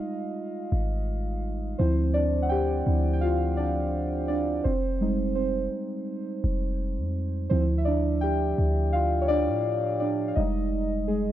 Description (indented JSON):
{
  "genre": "contemporary R&B",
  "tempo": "84 BPM",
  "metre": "4/4",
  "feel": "straight",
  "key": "D minor",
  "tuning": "A4 = 442 Hz",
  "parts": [
    { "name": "muted felt-like synth keys", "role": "accompaniment", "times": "0.0-11.3 s", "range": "F3 to G5", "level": "-26 LUFS", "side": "right 1 dB", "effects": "chorus" },
    { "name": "clean 808-style bass", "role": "bass", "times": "0.7-11.3 s", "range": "F1 to A2", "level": "-27 LUFS", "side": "equal", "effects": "none" }
  ],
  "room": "little or no reverb",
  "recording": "dark, warm production",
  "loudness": "-24 LUFS",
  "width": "side -12 dB against mid",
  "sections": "0.0-11.3 A section",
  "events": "synth keys solo 0.0-11.3",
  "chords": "0.0 Fm7; 1.8 Dm7; 4.7 Fm7; 7.5 Dm; 10.4 Fm7",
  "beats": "0.36 1.08 | 1.79 2.51 3.22 3.94 | 4.65 5.36 6.08 6.79 | 7.51 8.22 8.94 9.65 | 10.36 11.08"
}